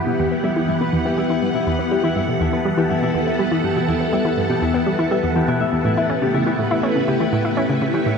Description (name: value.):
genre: ambient, sequencer-driven space music.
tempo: 122 BPM.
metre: 4/4.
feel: straight.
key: E dorian.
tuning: A4 = 439 Hz.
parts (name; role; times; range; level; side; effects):
phased string machine; sustained chords; 0.0-8.2 s; E3 to F#5; -20 LUFS; left 1 dB; ensemble chorus, phaser.
Celtic harp; arpeggios; 0.0-8.2 s; E4 to E5; -24 LUFS; left 3 dB; auto-pan, low-pass filter, analog delay.
analog pluck; riff; 0.0-8.1 s; E2 to E4; -22 LUFS; right 1 dB; chorus, analog delay.
room: wet cathedral reverb, RT60 6.5 s.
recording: in a vast, echoing space.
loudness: -17 LUFS.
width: side -6 dB against mid.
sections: 0.0-8.2 A section.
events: filter sweep on synth arpeggio sound 0.0-8.2.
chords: 0.0 Emadd9; 5.8 A7.